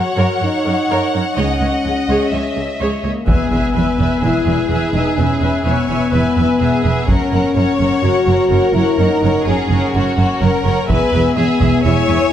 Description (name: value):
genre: cinematic, epic orchestral film score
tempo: 126 BPM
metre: 4/4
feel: straight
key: unclear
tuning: A4 = 440 Hz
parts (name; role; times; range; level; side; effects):
- rich symphonic violin section; second line; 0.0-12.3 s; F#4 to F#5; -21 LUFS; left 3 dB; none
- warm symphonic viola section; accompaniment; 0.0-12.3 s; G#4 to E5; -22 LUFS; right 1 dB; none
- mellow French horn section; sustained chords; 0.0-12.3 s; A#3 to F#4; -18 LUFS; left 3 dB; none
- rich studio cello section; bass; 0.2-12.2 s; C#2 to F#2; -20 LUFS; right 3 dB; none
- rich symphonic double bass section; bass; 1.4-12.2 s; E1 to C#2; -21 LUFS; right 4 dB; none
- warm symphonic violin section; melody; 3.3-12.3 s; F#5 to G#5; -26 LUFS; left 4 dB; none
- taiko ensemble; drums; 3.3-4.2, 7.1-8.0, 10.9-11.8 s; none; -19 LUFS; equal; none
- impact; sound effects; 3.3-5.2 s; none; -26 LUFS; equal; none
room: moderate concert hall reverb, RT60 2.2 s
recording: none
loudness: -13 LUFS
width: side -10 dB against mid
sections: 0.0-3.3 A section; 3.3-12.3 B section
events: impact 3.3-5.2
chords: 0.0 F#; 1.4 C#madd9; 3.3 E; 7.1 F#; 10.9 E